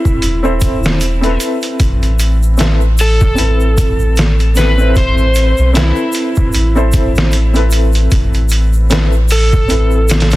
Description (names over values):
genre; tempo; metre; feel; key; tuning
trip hop; 76 BPM; 4/4; swing 58% on 16ths; A minor; A4 = 441 Hz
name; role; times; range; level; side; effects
electric slide guitar; melody; 0.0-10.4 s; E4 to C5; -19 LUFS; right 1 dB; tape echo
felt-muted upright piano; accompaniment; 0.0-10.4 s; C4 to C5; -19 LUFS; equal; tremolo, low-pass filter, tape echo
trip hop sampler-style drum kit; drums; 0.1-10.4 s; hi-hat, kick drum, snare drum; -15 LUFS; equal; none
tube shaker; percussion; 0.1-10.4 s; none; -30 LUFS; equal; none
soft dub sub bass; bass; 0.2-10.4 s; E1 to B1; -12 LUFS; equal; none
room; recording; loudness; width
little or no reverb; dense, heavily limited modern master, vinyl crackle; -10 LUFS; side -17 dB against mid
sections
0.0-10.4 A section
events
none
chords
0.0 Amadd9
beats
0.22 1.01 | 1.80 2.59 3.38 4.17 | 4.96 5.74 6.53 7.32 | 8.11 8.90 9.69